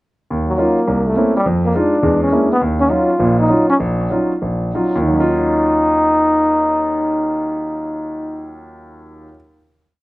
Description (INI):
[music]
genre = jazz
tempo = 176-208 BPM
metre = 4/4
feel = swing 61% on 8ths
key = Eb minor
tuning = A4 = 441 Hz
[part]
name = warm grand piano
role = accompaniment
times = 0.3-9.4 s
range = Bb1 to F4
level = -17 LUFS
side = equal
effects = none
[part]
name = clear trombone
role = melody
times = 0.5-8.6 s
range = Gb3 to F4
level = -16 LUFS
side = left 1 dB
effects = slapback echo
[sound]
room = little or no reverb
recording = recorded outdoors, with no room sound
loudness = -14 LUFS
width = side -19 dB against mid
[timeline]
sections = 0.3-5.1 A section; 5.1-7.8 final chord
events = slowing down 2.6-5.1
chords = 0.3 Ebm9; 0.9 C7b9; 1.5 Fm7; 2.0 E7#11; 2.6 Ebm9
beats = | 0.31 0.60 0.89 1.18 | 1.46 1.75 2.04 2.33 | 2.62 2.91 3.20 3.50 | 3.80 4.11 4.42 4.75 | 5.08 5.42 5.76 6.11 | 6.45 6.79 7.13 7.47